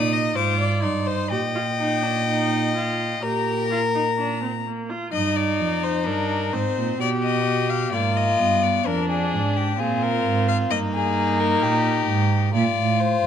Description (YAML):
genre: classical, baroque-style fugue for string quartet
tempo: 64 BPM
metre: 4/4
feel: straight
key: Eb major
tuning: A4 = 435 Hz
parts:
  - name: rich violin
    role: melody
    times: 0.0-13.3 s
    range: G4 to Eb6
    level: -26 LUFS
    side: left 10 dB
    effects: none
  - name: warm violin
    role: second line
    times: 0.0-13.3 s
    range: D4 to Eb5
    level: -24 LUFS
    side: left 3 dB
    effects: none
  - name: rich viola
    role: accompaniment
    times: 0.0-12.5 s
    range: Bb3 to G4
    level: -28 LUFS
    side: right 3 dB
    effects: none
  - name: dark cello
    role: bass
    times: 0.0-13.3 s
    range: F2 to B2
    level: -25 LUFS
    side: right 4 dB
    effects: none
room: moderate scoring stage reverb, RT60 1.7 s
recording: none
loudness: -20 LUFS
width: side -8 dB against mid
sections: 0.0-5.1 A section; 5.1-13.3 B section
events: none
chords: 0.0 Cm; 1.3 Eb/Bb; 3.2 Bb; 5.1 Eb; 7.0 Ddim7/B; 8.9 Bb7/F; 10.7 Eb/G; 12.5 Bb (rootless)